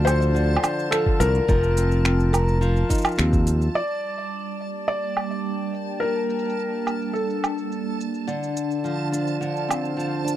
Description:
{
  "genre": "folktronica",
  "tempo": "106 BPM",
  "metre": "4/4",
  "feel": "straight",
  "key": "G minor",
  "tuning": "A4 = 440 Hz",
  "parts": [
    { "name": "felt-muted upright piano", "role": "melody", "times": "0.0-8.0 s", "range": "A4 to D5", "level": "-26 LUFS", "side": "left 2 dB", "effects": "tape echo" },
    { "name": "nylon-string guitar", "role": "arpeggios", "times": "0.0-4.3, 8.3-10.4 s", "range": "D3 to Bb4", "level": "-26 LUFS", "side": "equal", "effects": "tape echo" },
    { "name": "modern bright fingered electric bass", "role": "bass", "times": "0.0-3.7 s", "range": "F1 to Eb2", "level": "-20 LUFS", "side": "equal", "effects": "none" },
    { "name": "backwards swelling texture", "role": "texture", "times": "0.0-10.4 s", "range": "A5", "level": "-36 LUFS", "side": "right 4 dB", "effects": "built-in reverb" },
    { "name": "organic electronic drum kit", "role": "drums", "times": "0.1-10.4 s", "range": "finger snaps, hi-hat, shaker, woodblock", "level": "-26 LUFS", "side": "right 2 dB", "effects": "overdrive, low-pass filter on perc, low-pass filter on hats, low-pass filter on snare, low-pass filter on room" },
    { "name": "electronic kick drum", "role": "drums", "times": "1.1-3.4 s", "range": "none", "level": "-22 LUFS", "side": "equal", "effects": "none" },
    { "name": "warm analog pad", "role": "sustained chords", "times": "3.8-10.4 s", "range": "D3 to G5", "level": "-28 LUFS", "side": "right 2 dB", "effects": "chorus, tremolo" }
  ],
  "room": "little or no reverb",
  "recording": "dry, close 1970s-style studio recording",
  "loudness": "-21 LUFS",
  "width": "side -12 dB against mid",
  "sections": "0.0-3.8 A section; 3.8-10.4 B section",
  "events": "band accent 3.2; filter sweep on drum 3.8-10.4; filter sweep on analog synth pad 3.8-10.4",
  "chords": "0.0 Dm7; 1.5 F7sus4; 3.8 Gm; 8.3 Dm7"
}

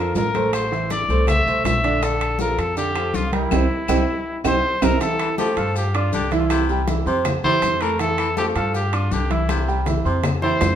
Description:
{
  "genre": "latin, salsa",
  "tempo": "161 BPM",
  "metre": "4/4",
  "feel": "straight",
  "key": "F major",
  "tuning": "A4 = 440 Hz",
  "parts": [
    { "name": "clear trumpet", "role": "melody", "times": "0.0-10.8 s", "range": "E4 to E5", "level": "-23 LUFS", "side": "left 1 dB", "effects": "none" },
    { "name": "bright upright piano", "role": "accompaniment", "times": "0.0-10.7 s", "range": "D3 to F6", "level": "-23 LUFS", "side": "right 4 dB", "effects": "none" },
    { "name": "upright bass", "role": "bass", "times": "0.0-10.8 s", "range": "A1 to G2", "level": "-24 LUFS", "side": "left 1 dB", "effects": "none" },
    { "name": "bongos", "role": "percussion", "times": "0.2-10.8 s", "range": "none", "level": "-33 LUFS", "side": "left 6 dB", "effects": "none" },
    { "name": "congas", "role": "percussion", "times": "0.2-10.7 s", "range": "none", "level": "-29 LUFS", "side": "left 5 dB", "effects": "none" },
    { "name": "maracas", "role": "percussion", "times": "0.2-10.8 s", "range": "none", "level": "-39 LUFS", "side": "left 6 dB", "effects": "none" },
    { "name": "timbales", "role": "percussion", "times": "0.2-10.8 s", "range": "none", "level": "-28 LUFS", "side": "right 6 dB", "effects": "none" },
    { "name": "claves", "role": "percussion", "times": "0.5-10.8 s", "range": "none", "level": "-38 LUFS", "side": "left 5 dB", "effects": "none" },
    { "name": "clear baritone saxophone", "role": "second line", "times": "5.2-10.6 s", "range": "C3 to G3", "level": "-29 LUFS", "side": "left 5 dB", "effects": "none" }
  ],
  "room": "wet large studio reverb, RT60 1.5 s",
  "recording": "minimal, uncompressed stereo recording",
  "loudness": "-18 LUFS",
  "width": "side -9 dB against mid",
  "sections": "0.0-5.0 A section; 5.0-10.8 B section",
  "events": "band accent 3.5-5.0; drum fill 4.4-5.0, 9.5-10.8",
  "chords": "0.0 Bbmaj7(no3); 0.5 Bbmaj9#11; 2.0 Bbmaj7; 3.5 C; 5.0 Fmaj9; 5.8 G5; 6.5 C; 7.2 Fmaj9; 8.7 G5; 9.5 C; 10.2 Fmaj7sus2"
}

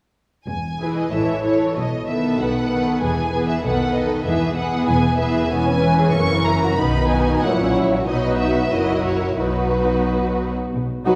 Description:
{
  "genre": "quick classical-period movement for string orchestra",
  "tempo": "94 BPM",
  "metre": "2/4",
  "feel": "rubato",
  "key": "E major, B major from 5.5 s",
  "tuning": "A4 = 440 Hz",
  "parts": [
    { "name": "warm studio violin section", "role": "melody", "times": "0.5-10.4 s", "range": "B4 to C#6", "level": "-28 LUFS", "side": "equal", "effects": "none" },
    { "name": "dark symphonic double bass section", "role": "bass", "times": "0.5-11.2 s", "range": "E1 to B1", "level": "-29 LUFS", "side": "equal", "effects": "none" },
    { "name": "rich studio cello section", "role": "bass", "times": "0.5-11.2 s", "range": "E2 to B2", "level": "-28 LUFS", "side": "equal", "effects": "none" },
    { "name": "rich studio violin section", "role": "second line", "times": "0.8-11.2 s", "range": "A#3 to C#5", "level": "-26 LUFS", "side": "equal", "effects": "none" },
    { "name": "rich studio viola section", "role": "accompaniment", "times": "0.8-11.2 s", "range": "D#3 to E4", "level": "-24 LUFS", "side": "equal", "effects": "none" }
  ],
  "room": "wet scoring stage reverb, RT60 2.0 s",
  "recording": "heard from further back in the room",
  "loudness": "-20 LUFS",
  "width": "mono",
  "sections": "0.5-10.7 A section",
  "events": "none",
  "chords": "0.5 E; 1.1 A; 1.8 B7; 3.0 E; 3.6 B7; 4.3 E; 5.5 C#m7/E; 6.1 F#7; 6.8 B; 7.4 F#7/A#; 8.1 B; 8.7 F#7; 9.4 B"
}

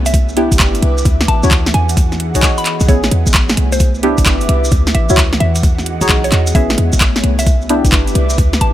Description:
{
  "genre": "UK garage, two-step garage",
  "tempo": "131 BPM",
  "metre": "4/4",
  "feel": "swing 66% on 16ths",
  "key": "unclear",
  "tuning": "A4 = 440 Hz",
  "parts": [
    { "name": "ethereal airy pad", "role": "sustained chords", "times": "0.0-8.7 s", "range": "B3 to G#4", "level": "-27 LUFS", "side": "left 1 dB", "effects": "ensemble chorus, built-in reverb, sidechain pumping" },
    { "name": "short 808-style bass", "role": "bass", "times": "0.0-8.7 s", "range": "G1 to E2", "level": "-15 LUFS", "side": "equal", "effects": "tube saturation" },
    { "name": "airy breathy pad", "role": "texture", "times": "0.0-8.7 s", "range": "E3 to D6", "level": "-23 LUFS", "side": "right 1 dB", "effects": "chorus, sidechain pumping" },
    { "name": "mallet-like synth pluck", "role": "melody", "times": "0.1-8.7 s", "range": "C5 to B5", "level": "-22 LUFS", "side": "equal", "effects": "chorus, digital delay" },
    { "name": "electronic kick drum", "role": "drums", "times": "0.1-8.5 s", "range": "none", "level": "-14 LUFS", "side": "equal", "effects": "overdrive" },
    { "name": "garage drum kit", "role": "drums", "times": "0.1-8.7 s", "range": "handclaps, hi-hat, snare drum", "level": "-17 LUFS", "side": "equal", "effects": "overdrive" },
    { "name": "maracas", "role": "percussion", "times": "0.1-8.6 s", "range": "none", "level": "-26 LUFS", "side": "right 2 dB", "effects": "none" },
    { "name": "deep mellow chord stab", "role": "stabs", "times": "0.4-8.4 s", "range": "B3 to C#5", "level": "-18 LUFS", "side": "equal", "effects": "chorus, vintage 12-bit sampler grit, digital delay" }
  ],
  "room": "little or no reverb",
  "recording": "none",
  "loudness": "-10 LUFS",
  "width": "side -13 dB against mid",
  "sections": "0.0-8.7 A section",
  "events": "none",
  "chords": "0.0 Cmaj9; 1.1 Dmaj9; 1.7 Emaj9; 2.9 Amaj9; 3.6 Cmaj9; 4.7 Dmaj9; 5.4 Emaj9; 6.5 Amaj9; 7.2 Cmaj9"
}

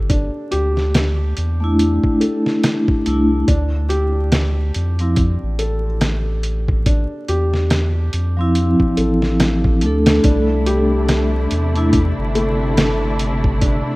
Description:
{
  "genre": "trip hop",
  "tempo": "71 BPM",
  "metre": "4/4",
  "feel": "swing 58% on 16ths",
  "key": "D minor",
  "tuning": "A4 = 438 Hz",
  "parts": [
    { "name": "felt-muted upright piano", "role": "arpeggios", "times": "0.0-14.0 s", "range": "A3 to A4", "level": "-25 LUFS", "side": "equal", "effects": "tape echo" },
    { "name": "warm sub bass", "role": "bass", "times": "0.0-13.8 s", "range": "G1 to F2", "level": "-19 LUFS", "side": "equal", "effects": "none" },
    { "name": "trip hop sampler-style drum kit", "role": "drums", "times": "0.1-13.9 s", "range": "hi-hat, kick drum, snare drum", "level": "-19 LUFS", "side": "equal", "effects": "small room ambience" },
    { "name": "vibraphone with medium mallets", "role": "accompaniment", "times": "1.6-12.0 s", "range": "F3 to A4", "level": "-18 LUFS", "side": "equal", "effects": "harmonic tremolo, tape echo" },
    { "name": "dark symphonic string section", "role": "sustained chords", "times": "10.2-14.0 s", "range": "C3 to E4", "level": "-23 LUFS", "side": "equal", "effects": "none" }
  ],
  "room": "light reverb",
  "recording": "rough home demo mix, vinyl crackle",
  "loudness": "-15 LUFS",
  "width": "side -21 dB against mid",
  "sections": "0.0-14.0 A section",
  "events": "none",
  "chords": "0.0 C69 (rootless); 3.5 Dm9; 10.2 C69"
}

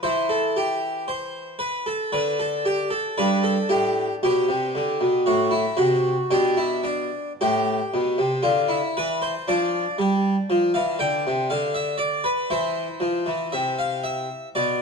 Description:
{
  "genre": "classical, baroque-style suite movement for harpsichord",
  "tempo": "58 BPM",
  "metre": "3/4",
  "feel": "rubato",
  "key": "unclear",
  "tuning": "A4 = 439 Hz",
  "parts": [
    { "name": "harpsichord", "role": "solo", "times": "0.0-14.8 s", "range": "G2 to G5", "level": "-21 LUFS", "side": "equal", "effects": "none" }
  ],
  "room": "wet stone room reverb, RT60 1.4 s",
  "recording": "worn, warbling old tape, cassette tape, warbly pitch drift",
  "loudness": "-21 LUFS",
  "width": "side -5 dB against mid",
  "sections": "0.0-14.8 A section",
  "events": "none",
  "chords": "0.1 D13sus4; 3.2 G; 5.3 F#dim/A; 6.3 G; 9.5 G5; 12.5 C"
}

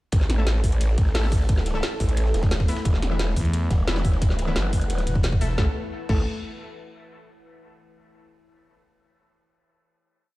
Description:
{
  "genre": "dark technical drum and bass",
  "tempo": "176 BPM",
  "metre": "4/4",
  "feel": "straight",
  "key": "unclear",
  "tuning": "A4 = 440 Hz",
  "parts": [
    { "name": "deep dark ambient pad", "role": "sustained chords", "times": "1.1-5.7 s", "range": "A3 to F#5", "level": "-35 LUFS", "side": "equal", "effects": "chorus, built-in reverb, sidechain pumping" },
    { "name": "growl bass", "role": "bass", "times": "0.1-6.3 s", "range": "E1 to A1", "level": "-23 LUFS", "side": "equal", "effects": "chorus, overdrive, sidechain pumping" },
    { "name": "crunchy breakbeat drum kit", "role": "drums", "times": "0.1-5.6 s", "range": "hi-hat, ride cymbal, snare drum", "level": "-43 LUFS", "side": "equal", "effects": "high-pass filter on cymbals, high-pass filter on hats, high-pass filter on snare, high-pass filter on room" },
    { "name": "drum and bass drum kit", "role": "drums", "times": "0.1-6.2 s", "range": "crash cymbal, hi-hat, snare drum", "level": "-30 LUFS", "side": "equal", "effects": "none" },
    { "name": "electronic kick drum", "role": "drums", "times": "0.1-6.2 s", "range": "none", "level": "-22 LUFS", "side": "equal", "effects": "none" },
    { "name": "orchestra-hit-like synth stab", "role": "stabs", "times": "0.4-6.2 s", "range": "E3 to A4", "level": "-33 LUFS", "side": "left 2 dB", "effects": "built-in reverb, dub echo" },
    { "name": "growling FM bass", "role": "bass", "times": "3.4-5.6 s", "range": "E1 to E2", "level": "-23 LUFS", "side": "equal", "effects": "none" }
  ],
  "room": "digital ambience",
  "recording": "played on a big sound system in a bare room, stone room reverb",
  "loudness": "-20 LUFS",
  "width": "side -18 dB against mid",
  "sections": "0.1-5.6 drop; 5.6-6.9 final chord",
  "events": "drop 0.1-5.6",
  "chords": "0.1 A5; 2.9 E5; 5.6 A5"
}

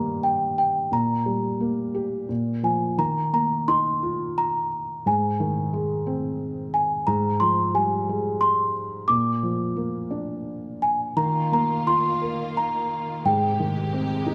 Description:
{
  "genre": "children's music, lullaby",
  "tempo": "88 BPM",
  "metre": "3/4",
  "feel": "rubato",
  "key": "Eb major",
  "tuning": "A4 = 441 Hz",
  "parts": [
    { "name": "small celesta", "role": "melody", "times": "0.0-14.3 s", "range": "G5 to D6", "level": "-26 LUFS", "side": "equal", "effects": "none" },
    { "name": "felt-muted upright piano", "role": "accompaniment", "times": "0.0-14.3 s", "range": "G2 to Bb4", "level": "-28 LUFS", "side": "equal", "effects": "none" },
    { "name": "rich studio string section", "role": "sustained chords", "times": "11.2-14.3 s", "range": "C3 to G4", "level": "-35 LUFS", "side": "equal", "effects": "none" }
  ],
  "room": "moderate scoring stage reverb, RT60 1.6 s",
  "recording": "none",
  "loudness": "-24 LUFS",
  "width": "mono",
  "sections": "0.0-11.2 A section; 11.2-14.3 A section",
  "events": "none",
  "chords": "0.0 Eb/G; 0.9 Gm/Bb; 2.3 Bb5; 3.0 Ebsus2; 5.1 Ab; 7.1 Fmadd9/Ab; 9.1 Bb; 11.2 Ebsus2; 13.2 Abmaj7"
}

